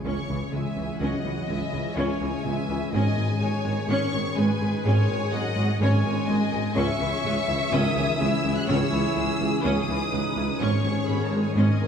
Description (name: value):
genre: cinematic, hybrid orchestral and electronic film score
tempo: 125 BPM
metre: 4/4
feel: straight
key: C# minor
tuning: A4 = 441 Hz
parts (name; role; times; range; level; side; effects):
- rich symphonic violin section; melody; 0.0-11.9 s; E5 to F#6; -33 LUFS; left 1 dB; none
- warm symphonic violin section; second line; 0.0-11.9 s; G#4 to E5; -32 LUFS; left 4 dB; none
- dark symphonic viola section; accompaniment; 0.0-11.9 s; D#3 to G#4; -32 LUFS; equal; none
- mellow French horn section; sustained chords; 0.0-11.9 s; D#3 to F#4; -32 LUFS; left 3 dB; none
- warm trombone section; sustained chords; 0.0-11.9 s; D#3 to C#4; -34 LUFS; right 2 dB; none
- round analog bass; riff; 0.0-11.9 s; C#2 to G#3; -31 LUFS; left 1 dB; none
- rich symphonic double bass section; bass; 0.0-11.9 s; G#1 to C#2; -31 LUFS; right 2 dB; none
- impact; sound effects; 0.0-1.0 s; none; -46 LUFS; equal; none
- harp-like synth pluck; arpeggios; 0.1-11.9 s; C#3 to G#4; -32 LUFS; right 2 dB; chorus, tape echo
- warm studio cello section; bass; 0.1-11.9 s; G#2 to C#3; -32 LUFS; right 1 dB; none
- warm tuba; bass; 0.1-11.9 s; G#1 to C#2; -32 LUFS; right 1 dB; none
room: wet scoring stage reverb, RT60 1.9 s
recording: small room reverb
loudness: -22 LUFS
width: side -7 dB against mid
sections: 0.0-11.9 A section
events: impact 0.0-1.0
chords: 0.0 C#madd9; 2.9 G#sus4; 6.8 C#madd9; 10.6 G#sus4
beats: 0.05 0.53 | 1.01 1.49 1.97 2.45 | 2.93 3.41 3.89 4.37 | 4.85 5.33 5.81 6.29 | 6.77 7.25 7.73 8.21 | 8.69 9.17 9.65 10.13 | 10.61 11.09 11.57